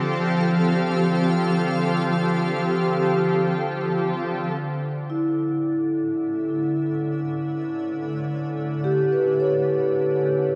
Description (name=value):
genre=ambient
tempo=free time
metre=none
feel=none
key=unclear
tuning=A4 = 436 Hz
part: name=shimmering ambient pad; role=sustained chords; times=0.0-10.6 s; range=A2 to F5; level=-26 LUFS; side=equal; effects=chorus, built-in reverb
part: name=organ-like drone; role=drone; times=0.0-10.6 s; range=D3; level=-32 LUFS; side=equal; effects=ensemble chorus, built-in reverb
part: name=vibraphone with medium mallets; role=arpeggios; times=5.1-10.6 s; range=E4 to C#5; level=-24 LUFS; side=equal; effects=tape echo
room=wet lush hall reverb, RT60 2.7 s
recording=dark, warm production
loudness=-23 LUFS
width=mono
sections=0.0-4.6 A section; 4.6-10.6 B section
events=fade-in on ambient pad 4.6-10.6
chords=0.0 Fadd9; 4.6 Aadd9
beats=free time